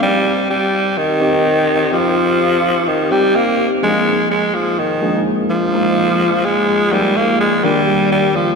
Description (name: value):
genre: pop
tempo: 126 BPM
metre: 4/4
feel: straight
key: unclear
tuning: A4 = 439 Hz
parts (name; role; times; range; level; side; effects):
- breathy alto saxophone; melody; 0.0-8.6 s; Eb3 to Bb3; -14 LUFS; equal; ping-pong delay
- tine electric piano; accompaniment; 0.0-8.6 s; Eb3 to Ab4; -18 LUFS; left 1 dB; ensemble chorus
room: wet lush hall reverb, RT60 2.8 s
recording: dreamy mix soaked in reverb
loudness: -13 LUFS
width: side -4 dB against mid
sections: 0.0-8.6 A section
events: none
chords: 0.0 Cm; 3.8 Bb7sus4; 7.6 Ebmaj7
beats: | 0.02 0.50 0.97 1.45 | 1.93 2.40 2.88 3.35 | 3.83 4.31 4.78 5.26 | 5.73 6.21 6.69 7.16 | 7.64 8.12